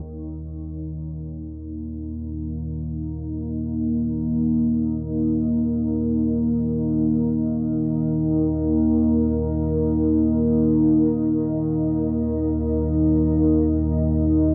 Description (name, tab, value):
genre	dark ambient drone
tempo	free time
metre	none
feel	none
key	unclear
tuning	A4 = 441 Hz
part	deep dark ambient pad	sustained chords	0.2-14.5 s	Bb3 to Eb5	-24 LUFS	equal	chorus, built-in reverb
part	analog drone	drone	0.0-14.5 s	Eb2 to Eb3	-28 LUFS	equal	chorus
room	wet huge ambient reverb, RT60 8.8 s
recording	none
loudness	-22 LUFS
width	mono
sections	0.0-14.5 A section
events	fade-in on synth drone 0.0-14.5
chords	0.0 Eb5